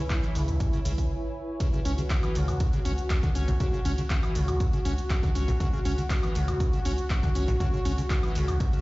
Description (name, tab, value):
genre	acid house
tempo	120 BPM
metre	4/4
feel	straight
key	C# minor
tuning	A4 = 440 Hz
part	warm analog pad	sustained chords	0.0-8.8 s	E4 to F#4	-34 LUFS	left 1 dB	chorus, sidechain pumping
part	acid bass, square	riff	0.0-8.8 s	C#2 to C#4	-31 LUFS	equal	lush chorus, vintage 12-bit sampler grit, sidechain pumping, tape echo
part	granular cloud pad	texture	0.0-1.1 s	E4 to G#5	-40 LUFS	right 1 dB	built-in reverb, sidechain pumping
part	electronic kick drum	drums	0.1-8.7 s	none	-27 LUFS	equal	none
part	punchy analog drum machine	drums	0.1-8.8 s	handclaps, hi-hat, shaker, woodblock	-37 LUFS	equal	none
part	round analog bass	bass	0.4-8.5 s	C#2	-28 LUFS	equal	sidechain pumping
room	little or no reverb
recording	played on a big sound system in a bare room, stone room reverb, nothing above 7.6 kHz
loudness	-24 LUFS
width	side -20 dB against mid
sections	0.0-1.6 A section; 1.6-8.8 B section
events	break 1.1-1.6; drop 1.6-8.8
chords	0.0 C#m7; 1.6 N.C.